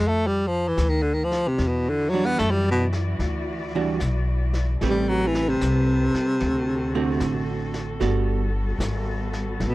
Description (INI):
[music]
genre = jazz ballad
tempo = 75 BPM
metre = 4/4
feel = swing 67% on 8ths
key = unclear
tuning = A4 = 440 Hz
[part]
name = breathy baritone saxophone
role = melody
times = 0.0-9.7 s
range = B2 to B3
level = -22 LUFS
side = equal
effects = none
[part]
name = upright bass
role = bass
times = 0.0-9.7 s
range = G1 to F#2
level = -25 LUFS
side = equal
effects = none
[part]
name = vintage brush drum kit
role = drums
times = 0.8-9.7 s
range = brushed snare drum, hi-hat, snare drum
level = -36 LUFS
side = left 1 dB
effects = none
[part]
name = warm chamber cello section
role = sustained chords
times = 1.6-9.7 s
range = D3 to D5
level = -32 LUFS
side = left 1 dB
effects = none
[part]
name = archtop guitar, miked and amplified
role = accompaniment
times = 2.1-8.5 s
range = D3 to B4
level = -26 LUFS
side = right 6 dB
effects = none
[sound]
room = little or no reverb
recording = dry, close 1970s-style studio recording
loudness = -21 LUFS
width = side -18 dB against mid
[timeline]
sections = 0.0-9.7 A section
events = baritone saxophone solo 0.0-9.7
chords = 0.0 Dm; 1.6 Em9; 4.8 Am9; 6.4 D7; 8.0 Gmaj9